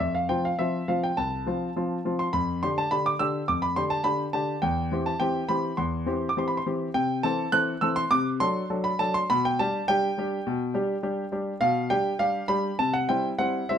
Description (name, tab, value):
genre	classical-period piano sonatina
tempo	103 BPM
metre	4/4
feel	rubato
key	C major, G major from 6.9 s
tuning	A4 = 442 Hz
part	clear concert grand piano	solo	0.0-13.8 s	C2 to F#6	-24 LUFS	equal	none
room	light reverb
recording	close, detailed microphones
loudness	-24 LUFS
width	side -8 dB against mid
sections	0.0-13.8 A section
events	none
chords	0.0 F; 2.3 G5/F; 4.6 C/E; 6.9 Am/C; 8.1 D7/C; 9.3 G/B; 12.8 C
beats	| 0.01 0.59 1.18 1.76 | 2.34 2.92 3.49 4.06 | 4.63 5.20 5.79 6.37 | 6.95 7.53 8.11 8.69 | 9.29 9.87 10.44 11.02 | 11.60 12.19 12.78 13.39